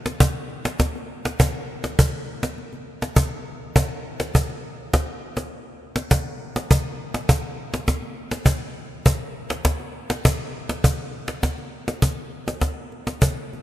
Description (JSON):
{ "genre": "world meditative", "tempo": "68 BPM (dotted quarters)", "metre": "6/8", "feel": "straight", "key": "none", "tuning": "none", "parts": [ { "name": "cajon", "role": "percussion", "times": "0.1-13.6 s", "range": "none", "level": "-21 LUFS", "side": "equal", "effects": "none" } ], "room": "moderate plate reverb, RT60 3.4 s", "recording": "dreamy mix soaked in reverb", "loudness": "-22 LUFS", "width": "side -14 dB against mid", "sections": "0.0-13.6 A section", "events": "none", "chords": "none" }